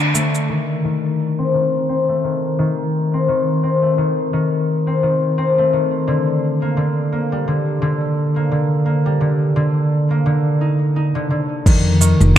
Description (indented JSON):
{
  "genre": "folktronica",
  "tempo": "86 BPM",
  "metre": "4/4",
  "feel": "swing 56% on 16ths",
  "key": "unclear",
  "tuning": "A4 = 443 Hz",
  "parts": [
    { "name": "concert harp", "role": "arpeggios", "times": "0.0-12.4 s", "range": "D3 to Eb4", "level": "-16 LUFS", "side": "left 1 dB", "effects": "low-pass filter, ping-pong delay" },
    { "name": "organic electronic drum kit", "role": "drums", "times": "0.0-0.5, 11.7-12.4 s", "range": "cabasa, crash cymbal, finger snaps", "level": "-20 LUFS", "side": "right 2 dB", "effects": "overdrive, low-pass filter on perc, low-pass filter on snare, low-pass filter on cymbals" },
    { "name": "upright bass", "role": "bass", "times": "11.7-12.3 s", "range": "F1 to F2", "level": "-13 LUFS", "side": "equal", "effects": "none" },
    { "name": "electronic kick drum", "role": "drums", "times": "11.7-12.4 s", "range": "none", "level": "-12 LUFS", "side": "equal", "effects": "overdrive" }
  ],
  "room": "moderate lush hall reverb, RT60 2.8 s",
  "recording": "dark, warm production",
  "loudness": "-15 LUFS",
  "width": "side -10 dB against mid",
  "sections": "0.5-11.7 A section",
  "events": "break 0.0-0.5; filter sweep on harp 0.5-11.7",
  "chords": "0.5 Adim/Eb; 6.1 Ebmaj7(no3) (rootless); 11.7 F7(no3)"
}